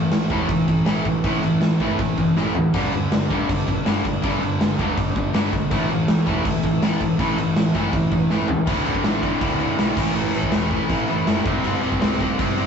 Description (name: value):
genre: punk rock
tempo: 162 BPM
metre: 4/4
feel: straight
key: unclear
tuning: A4 = 436 Hz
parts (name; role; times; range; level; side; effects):
- crunchy overdriven guitar; riff; 0.0-12.7 s; D2 to C4; -27 LUFS; right 6 dB; none
- overdriven semi-hollow guitar; riff; 0.0-12.7 s; D2 to C4; -23 LUFS; left 3 dB; none
- overdriven semi-hollow guitar; riff; 0.0-12.7 s; D2 to C4; -28 LUFS; right 3 dB; none
- picked electric bass; bass; 0.0-12.6 s; D1 to C#2; -29 LUFS; equal; none
- big rock drum kit; drums; 0.1-12.7 s; crash cymbal, kick drum, snare drum, toms; -23 LUFS; equal; none
room: moderate studio reverb, RT60 0.6 s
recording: rough rehearsal-room recording, nothing above 7.9 kHz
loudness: -18 LUFS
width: side -6 dB against mid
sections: 0.0-8.7 A section; 8.7-12.7 B section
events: drum fill 2.4-2.7, 8.3-8.7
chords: 0.0 A5; 2.7 G5; 5.7 A5; 8.7 D5; 10.0 A5; 11.5 C5